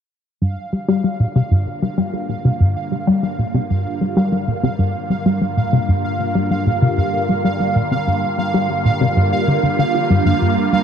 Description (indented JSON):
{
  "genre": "ambient, sequencer-driven space music",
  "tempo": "96 BPM",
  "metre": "4/4",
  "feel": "straight",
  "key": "G minor",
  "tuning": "A4 = 440 Hz",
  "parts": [
    { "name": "phased string machine", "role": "sustained chords", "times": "0.8-10.8 s", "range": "D3 to F4", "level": "-23 LUFS", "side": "right 1 dB", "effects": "ensemble chorus, phaser" },
    { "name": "tight sequenced synth", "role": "riff", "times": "0.4-10.8 s", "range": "G2 to G3", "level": "-17 LUFS", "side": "left 1 dB", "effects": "chorus, cassette tape, ping-pong delay" },
    { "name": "analog drone", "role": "bass", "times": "2.9-10.8 s", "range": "G2", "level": "-32 LUFS", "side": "equal", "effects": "chorus" },
    { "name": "pulsing gated texture", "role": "texture", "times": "0.4-10.8 s", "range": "F5", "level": "-23 LUFS", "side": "right 3 dB", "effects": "chorus, built-in reverb" }
  ],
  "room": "wet spring reverb, RT60 3.0 s",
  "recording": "echo-heavy mix",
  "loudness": "-16 LUFS",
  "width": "side -8 dB against mid",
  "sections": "0.4-10.8 A section",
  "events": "fade-in on string machine 0.4-10.8; fade-in on synth drone 0.4-10.8; filter sweep on synth arpeggio sound 0.4-10.8",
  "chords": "0.4 Gm7"
}